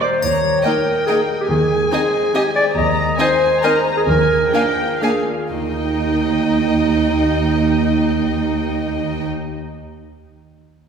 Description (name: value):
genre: cinematic, playful, whimsical film cue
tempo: 120-143 BPM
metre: 3/4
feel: straight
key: Eb major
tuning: A4 = 439 Hz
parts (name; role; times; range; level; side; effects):
- warm chamber violin section; second line; 0.0-9.3 s; G4 to Ab5; -26 LUFS; left 2 dB; none
- warm clarinet; second line; 0.0-9.3 s; Eb4 to Eb5; -18 LUFS; right 1 dB; none
- warm chamber viola section; accompaniment; 0.0-9.3 s; Bb3 to D5; -25 LUFS; right 1 dB; none
- concert harp; arpeggios; 0.0-10.1 s; Eb3 to Bb5; -26 LUFS; left 3 dB; none
- rich chamber violin section; melody; 0.2-9.3 s; F5 to Bb5; -27 LUFS; left 3 dB; none
- dark chamber cello section; bass; 0.2-9.3 s; Eb2; -23 LUFS; right 3 dB; none
- warm studio double bass section; bass; 0.2-9.3 s; Eb2; -25 LUFS; right 3 dB; none
- triangle; percussion; 0.2-1.0 s; none; -32 LUFS; left 6 dB; none
room: wet concert hall reverb, RT60 2.3 s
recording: recorded in a church or concert hall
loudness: -15 LUFS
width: side -6 dB against mid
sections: 0.2-5.5 A section; 5.5-8.5 B section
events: slowing down 2.1-5.5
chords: 0.2 Eb7; 1.5 Ab/Eb; 4.1 Bb7/Eb; 5.5 Eb